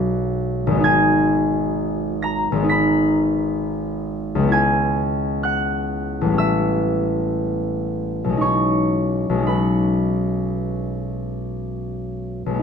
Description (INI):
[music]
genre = classical, solo harp piece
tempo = 55-66 BPM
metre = 4/4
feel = rubato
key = B major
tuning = A4 = 441 Hz
[part]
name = concert harp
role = solo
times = 0.0-12.6 s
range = G#1 to B6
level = -18 LUFS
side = left 1 dB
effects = none
[sound]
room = light reverb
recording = none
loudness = -18 LUFS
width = side -6 dB against mid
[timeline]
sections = 0.0-12.6 A section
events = none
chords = 0.0 B6; 0.8 G#madd9; 4.5 C#m7; 8.4 B69